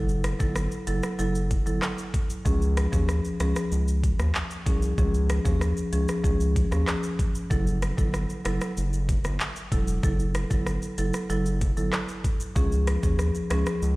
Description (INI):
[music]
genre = dancehall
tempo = 95 BPM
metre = 4/4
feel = straight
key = unclear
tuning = A4 = 439 Hz
[part]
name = marimba with medium mallets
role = accompaniment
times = 0.0-13.8 s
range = E#3 to A4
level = -29 LUFS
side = equal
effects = none
[part]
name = round analog bass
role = bass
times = 0.0-14.0 s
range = E1 to D#2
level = -26 LUFS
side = equal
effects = none
[part]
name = afro-pop drum kit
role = drums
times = 0.1-14.0 s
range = handclaps, hi-hat, kick drum, rim click, shaker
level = -27 LUFS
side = equal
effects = none
[sound]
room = digital ambience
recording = played on a big sound system in a bare room, large studio reverb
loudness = -23 LUFS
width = side -21 dB against mid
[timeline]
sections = 0.0-14.0 A section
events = none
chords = 0.0 F#m7; 2.5 C#; 7.5 F#m7; 12.6 C#